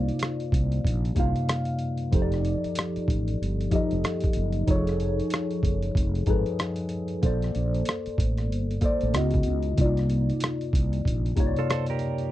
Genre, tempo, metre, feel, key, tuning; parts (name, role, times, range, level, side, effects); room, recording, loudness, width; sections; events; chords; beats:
R&B, neo-soul; 94 BPM; 4/4; swing 60% on 16ths; C dorian; A4 = 441 Hz
tine electric piano; accompaniment; 0.0-12.3 s; C3 to F5; -27 LUFS; left 1 dB; phaser
mellow fretless electric bass; bass; 0.0-11.5 s; F1 to Db2; -27 LUFS; equal
boom bap sampler-style drum kit; drums; 0.1-12.3 s; hi-hat, kick drum, rim click; -26 LUFS; equal
semi-hollow electric guitar; second line; 11.6-12.3 s; F4 to C5; -32 LUFS; right 13 dB; spring reverb
little or no reverb; dry, close 1970s-style studio recording; -23 LUFS; side -14 dB against mid
0.0-12.3 A section
0.0 Cm11; 2.1 F13; 4.7 F7alt; 7.2 Bbmaj9; 9.1 Dbm11; 9.8 Cm11
0.21 0.84 1.48 | 2.12 2.76 3.40 4.04 | 4.67 5.31 5.95 6.59 | 7.23 7.87 8.50 9.14 | 9.78 10.42 11.06 11.70